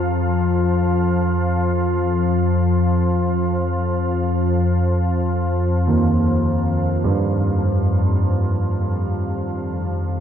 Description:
dark ambient drone; free time; A4 = 444 Hz
warm concert grand piano; arpeggios; 0.0-10.2 s; Eb2 to Ab4; -20 LUFS; right 1 dB; tape echo
organ-like drone; drone; 0.0-10.2 s; F2 to F3; -18 LUFS; left 1 dB; ensemble chorus, built-in reverb
bronze singing bowl; texture; 0.0-10.2 s; F4; -29 LUFS; left 3 dB
wet cathedral reverb, RT60 5.8 s; cassette tape; -17 LUFS; side -9 dB against mid
0.0-10.2 A section
fade-out 6.0-10.2
0.0 Ebadd9

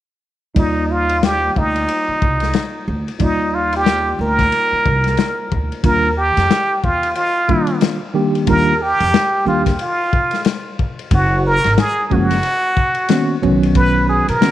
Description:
hip hop, jazz-hop; 91 BPM; 4/4; swing 61% on 16ths; Eb major; A4 = 441 Hz
tine electric piano; accompaniment; 0.5-14.5 s; C#3 to D5; -19 LUFS; right 1 dB; overdrive, fast stereo tremolo
trumpet with plunger mute; melody; 0.6-14.5 s; Eb4 to B4; -17 LUFS; right 1 dB
upright bass; bass; 0.6-14.4 s; Gb1 to F2; -20 LUFS; right 1 dB
crunchy breakbeat drum kit; drums; 0.6-14.5 s; hi-hat, kick drum, ride cymbal, snare drum; -20 LUFS; left 3 dB
moderate spring reverb, RT60 2.7 s; 1960s-style stereo; -14 LUFS; side -12 dB against mid
0.6-5.8 A section; 5.8-14.5 B section
0.6 Ebmaj9; 11.1 Gbadd9; 13.4 Badd9

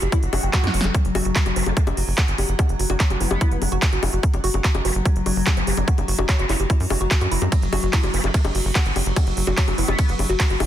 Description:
psychedelic trance; 146 BPM; 4/4; straight; A4 = 440 Hz
evolving wavetable pad; sustained chords; 0.0-10.7 s; F#3; -29 LUFS; left 3 dB; phaser, built-in reverb, sidechain pumping
woody wave-folded pluck; riff; 0.0-10.6 s; E4 to G5; -29 LUFS; moving between left 4 dB and right 3 dB; chorus, auto-pan, sidechain pumping, ping-pong delay
tight sequencer bass; bass; 0.0-10.7 s; F#1 to F#2; -23 LUFS; equal; tube saturation
big-room dance drum kit; drums; 0.0-10.7 s; bongos, handclaps, hi-hat, ride cymbal, snare drum; -25 LUFS; left 1 dB; overdrive
electronic kick drum; drums; 0.1-10.5 s; -19 LUFS; equal; overdrive
swell; sound effects; 0.2-0.9 s; -32 LUFS; right 2 dB
vowel-sweep wobble bass; second line; 1.6-10.2 s; A3 to C#4; -33 LUFS; left 1 dB; wide subtle chorus, sidechain pumping, high-pass filter, tape echo
digital ambience; dense, heavily limited modern master; -18 LUFS; side -11 dB against mid
0.0-10.7 A section
swell 0.2-0.9; drum fill 0.5-0.9
0.0 F#5

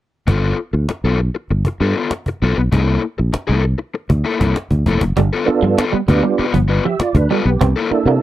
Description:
funk; 98 BPM; 4/4; straight; G mixolydian; A4 = 441 Hz
crunchy overdriven guitar; accompaniment; 0.3-8.1 s; Bb3 to B4; -20 LUFS; left 5 dB
fingered electric bass; bass; 0.3-8.2 s; F1 to C3; -16 LUFS; equal
cajon; drums; 0.3-8.1 s; -19 LUFS; equal
clean electric guitar; riff; 5.2-8.2 s; F3 to C4; -21 LUFS; right 8 dB
tonewheel organ; stabs; 5.5-8.2 s; Bb3 to E5; -17 LUFS; right 5 dB; overdrive, chorus vibrato, slow rotary speaker
little or no reverb; dry, close 1970s-style studio recording; -14 LUFS; side -14 dB against mid
0.3-5.2 A section; 5.2-8.2 B section
0.3 G9; 2.7 C13; 5.2 G9; 7.6 C13

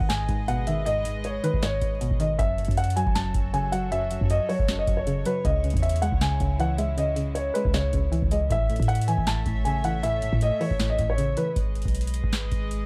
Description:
hip hop, trap; 157 BPM; 4/4; half-time; G# phrygian; A4 = 440 Hz
dark concert grand piano; melody; 0.0-11.5 s; B4 to A5; -30 LUFS; equal
string-like resonator pluck; accompaniment; 0.0-11.6 s; F#2 to G#3; -32 LUFS; equal; chorus
warm studio string section; sustained chords; 0.0-12.9 s; C#3 to E5; -40 LUFS; equal
clean 808-style bass; bass; 0.0-12.9 s; F#1 to A2; -30 LUFS; equal
booming analog drum machine; drums; 0.0-12.8 s; hi-hat, kick drum, snare drum; -30 LUFS; equal
little or no reverb; dry, gritty hardware recording, vinyl crackle; -25 LUFS; mono
0.0-11.6 A section; 11.6-12.9 B section
0.0 G#m; 2.4 F#m; 5.4 C#m; 8.5 A; 11.6 G#m

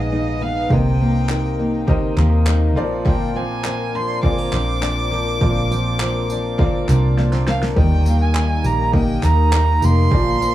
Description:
acoustic pop; 102 BPM; 4/4; straight; Eb major; A4 = 440 Hz
warm violin; melody; 0.0-10.5 s; Eb5 to D6; -24 LUFS; right 3 dB; tape echo
clear upright piano; accompaniment; 0.0-10.5 s; G3 to Eb5; -28 LUFS; left 1 dB; tape echo
fingerpicked steel-string acoustic guitar; accompaniment; 0.0-10.5 s; Ab2 to Cb5; -24 LUFS; left 4 dB; tape echo
nylon-string guitar; arpeggios; 0.0-10.5 s; F3 to Ab4; -27 LUFS; right 4 dB
vintage muted fingered electric bass; bass; 0.0-10.5 s; F1 to Eb2; -18 LUFS; equal
deep house drum kit; drums; 0.7-10.5 s; handclaps, kick drum, snare drum, tambourine; -22 LUFS; equal
little or no reverb; echo-heavy mix, small room ambience; -15 LUFS; side -14 dB against mid
0.0-7.8 A section; 7.8-10.5 B section
drum fill 7.2-7.8
0.0 Abm; 0.7 Cm7; 2.8 Bbadd9; 7.8 Eb

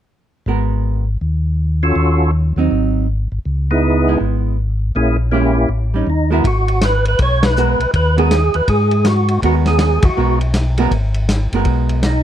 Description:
soul jazz organ trio; 161 BPM; 4/4; swing 63% on 8ths; G# minor; A4 = 439 Hz
archtop guitar, miked and amplified; accompaniment; 0.5-12.0 s; F#3 to A#4; -19 LUFS; right 5 dB
mellow tonewheel organ; bass; 0.5-12.2 s; G1 to G#2; -16 LUFS; equal; slow rotary speaker
percussive tonewheel organ; melody; 1.8-12.2 s; A#3 to C#5; -17 LUFS; right 1 dB; overdrive, chorus vibrato, slow rotary speaker, plate reverb
warm soul drum kit; drums; 6.4-12.1 s; hi-hat, kick drum, ride cymbal, snare drum; -20 LUFS; equal
light reverb; dark, warm production; -13 LUFS; side -10 dB against mid
0.5-6.4 A section; 6.4-12.2 B section
band accent 7.4, 10.0
0.5 G#m9; 2.0 D#m7b5; 2.7 G#7; 3.5 C#m7; 5.0 A#m7b5; 5.7 A7#11; 6.4 G#m9

